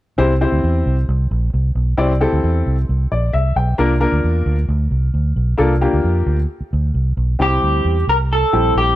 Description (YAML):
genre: uptempo 1960s-style soul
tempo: 133 BPM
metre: 4/4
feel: straight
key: C mixolydian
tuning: A4 = 440 Hz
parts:
  - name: warm upright piano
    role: accompaniment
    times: 0.2-8.9 s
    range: G3 to G5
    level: -19 LUFS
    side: left 2 dB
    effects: none
  - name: vintage muted fingered electric bass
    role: bass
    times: 0.2-8.9 s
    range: Bb1 to F2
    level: -16 LUFS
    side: equal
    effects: none
  - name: electric guitar through a small old amp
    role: melody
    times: 7.4-9.0 s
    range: G4 to Bb4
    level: -16 LUFS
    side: equal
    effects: lush chorus
room: studio reverb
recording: none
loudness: -15 LUFS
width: side -14 dB against mid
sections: 0.2-7.4 A section; 7.4-9.0 B section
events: upright piano fill 2.9-3.8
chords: 0.2 C; 3.8 Bb; 7.4 C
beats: | 0.18 0.63 1.08 1.53 | 1.98 2.43 2.88 3.33 | 3.78 4.24 4.69 5.14 | 5.59 6.04 6.49 6.94 | 7.40 7.85 8.30 8.75